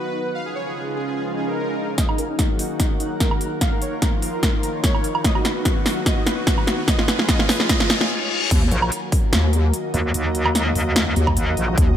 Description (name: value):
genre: heavy wobble dubstep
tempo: 147 BPM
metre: 4/4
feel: swing 53% on 16ths, half-time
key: Eb minor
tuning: A4 = 440 Hz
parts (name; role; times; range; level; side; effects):
- soft supersaw; melody; 0.0-8.1 s; Eb4 to F5; -28 LUFS; equal; low-pass filter, ping-pong delay
- lush unison pad; sustained chords; 0.0-12.0 s; Db3 to Ab4; -30 LUFS; left 1 dB; chorus, sidechain pumping
- granular cloud pad; texture; 0.0-12.0 s; Db4 to Bb5; -30 LUFS; right 2 dB; built-in reverb, sidechain pumping
- swell, riser, reverse cymbal and zap; sound effects; 1.3-8.5, 11.7-11.8 s; none; -29 LUFS; left 2 dB; none
- big-room dance drum kit; drums; 2.0-11.9 s; crash cymbal, hi-hat, snare drum, woodblock; -22 LUFS; equal; low-pass filter on snare, low-pass filter on hats, low-pass filter on perc, low-pass filter on cymbals, low-pass filter on room
- electronic kick drum; drums; 2.0-11.9 s; none; -20 LUFS; equal; none
- wobble bass; bass; 8.5-12.0 s; Eb2; -18 LUFS; equal; chorus, overdrive
- metallic wobble bass; bass; 8.7-11.8 s; Bb1 to Eb2; -20 LUFS; equal; chorus, overdrive
room: light reverb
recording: none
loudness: -18 LUFS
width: side -10 dB against mid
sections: 0.0-2.0 A section; 2.0-8.5 B section; 8.5-12.0 C section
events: filter sweep on analog synth pad 0.0-2.0, 2.0-8.5; swell 1.3-2.0; build-up 2.0-8.5; drum fill 2.0-8.1; filter sweep on supersaw synth 2.0-8.5; reverse cymbal 7.7-8.5; stop 8.1-8.5; drop 8.5-12.0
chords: 0.3 Db; 2.0 Ebm; 3.6 Bbsus4; 5.2 B; 6.9 Db; 8.5 Ebm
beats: | 0.35 0.76 1.16 1.57 | 1.98 2.39 2.80 3.20 | 3.61 4.02 4.43 4.84 | 5.25 5.65 6.06 6.47 | 6.88 7.29 7.69 8.10 | 8.51 8.92 9.33 9.73 | 10.14 10.55 10.96 11.37 | 11.78